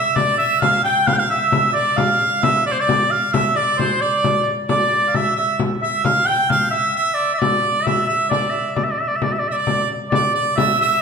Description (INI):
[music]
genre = medieval dance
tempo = 88 BPM (dotted quarters)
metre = 6/8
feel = straight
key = D minor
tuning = A4 = 440 Hz
[part]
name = clear shawm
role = melody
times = 0.0-11.0 s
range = C5 to G5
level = -18 LUFS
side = equal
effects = none
[part]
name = clear harmonica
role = second line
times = 0.0-11.0 s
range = C5 to G5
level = -22 LUFS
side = right 6 dB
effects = none
[part]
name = frame drum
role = percussion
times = 0.2-10.8 s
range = none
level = -22 LUFS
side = left 3 dB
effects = none
[sound]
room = wet recital hall reverb, RT60 1.5 s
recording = minimal, uncompressed stereo recording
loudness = -16 LUFS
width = side -6 dB against mid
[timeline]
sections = 0.0-10.1 A section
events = none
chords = none